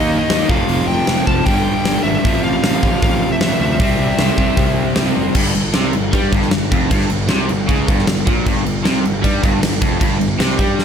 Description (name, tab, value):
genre	hard rock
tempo	154 BPM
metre	4/4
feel	straight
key	unclear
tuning	A4 = 441 Hz
part	smooth overdriven lead guitar	melody	0.0-4.9 s	Eb5 to A5	-22 LUFS	equal	none
part	cranked stack guitar	riff	0.0-10.8 s	F2 to Eb4	-20 LUFS	equal	overdrive
part	overdriven electric guitar	riff	0.0-10.8 s	F2 to Eb4	-23 LUFS	right 1 dB	none
part	fuzz picked electric bass	bass	0.0-10.8 s	F1 to G2	-21 LUFS	equal	overdrive
part	huge arena drum kit	drums	0.3-10.8 s	crash cymbal, hi-hat, kick drum, snare drum	-17 LUFS	equal	none
room	light reverb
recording	none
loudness	-14 LUFS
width	side -7 dB against mid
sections	0.0-5.4 A section; 5.4-10.8 B section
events	none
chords	0.5 F5; 1.5 G5; 2.2 F/A; 3.8 C; 5.4 G5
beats	0.30 | 0.69 1.08 1.47 1.86 | 2.25 2.64 3.02 3.41 | 3.80 4.19 4.58 4.97 | 5.36 5.75 6.13 6.52 | 6.91 7.30 7.69 8.07 | 8.46 8.85 9.24 9.62 | 10.01 10.40 10.79